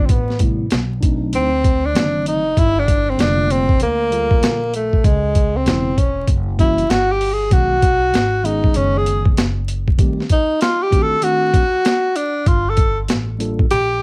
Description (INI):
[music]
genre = hip hop, jazz-hop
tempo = 97 BPM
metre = 4/4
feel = swing 64% on 16ths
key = unclear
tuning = A4 = 440 Hz
[part]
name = breathy tenor saxophone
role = melody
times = 0.0-14.0 s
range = G#3 to A4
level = -17 LUFS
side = equal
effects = cassette tape, plate reverb
[part]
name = mellow tine electric piano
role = accompaniment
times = 0.0-13.6 s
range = C3 to A4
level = -24 LUFS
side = equal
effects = fast stereo tremolo, cassette tape, plate reverb
[part]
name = upright bass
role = bass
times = 0.0-14.0 s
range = E1 to D2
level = -22 LUFS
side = equal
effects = none
[part]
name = boom bap sampler-style drum kit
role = drums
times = 0.1-13.9 s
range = hi-hat, kick drum, snare drum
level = -16 LUFS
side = equal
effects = cassette tape
[sound]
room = moderate studio reverb, RT60 0.5 s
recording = home recording on cassette, vinyl crackle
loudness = -14 LUFS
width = side -30 dB against mid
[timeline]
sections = 0.0-14.0 A section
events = tenor saxophone solo 0.0-14.0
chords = 0.1 Am9; 1.3 D7b9; 2.6 Gm9; 5.0 C#m7; 6.3 F#7b9; 7.5 B69; 10.0 Am7b5; 11.2 D7b9; 12.5 Gm9